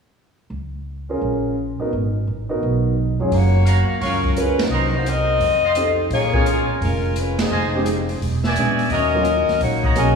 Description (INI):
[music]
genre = jazz, big band swing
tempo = 171 BPM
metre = 4/4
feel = swing 66% on 8ths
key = F# major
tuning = A4 = 440 Hz
[part]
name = upright bass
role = bass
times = 0.5-10.2 s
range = E1 to A#2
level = -22 LUFS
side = right 1 dB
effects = none
[part]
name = warm grand piano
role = accompaniment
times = 1.1-10.2 s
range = F#3 to C#5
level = -24 LUFS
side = right 1 dB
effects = none
[part]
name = mellow saxophone section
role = melody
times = 3.3-10.2 s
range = E#3 to D#5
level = -20 LUFS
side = left 3 dB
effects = none
[part]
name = open jazz drum kit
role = drums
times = 3.3-10.1 s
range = hi-hat, kick drum, ride cymbal, snare drum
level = -26 LUFS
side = left 1 dB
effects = none
[part]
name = brilliant trumpet section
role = stabs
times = 3.7-10.2 s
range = F4 to C#6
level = -25 LUFS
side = right 2 dB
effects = none
[sound]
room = wet scoring stage reverb, RT60 2.1 s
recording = recorded in a church or concert hall, small room ambience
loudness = -17 LUFS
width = side -5 dB against mid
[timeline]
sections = 0.5-3.3 A section; 3.3-10.2 B section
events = band accent 4.5, 7.3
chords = 0.5 F#maj7/C# (rootless); 1.9 G#m9; 3.3 F#maj7; 4.7 Cm7b5; 5.4 F7; 6.1 A#m7; 7.5 Fm7; 8.2 E9; 8.9 D#m7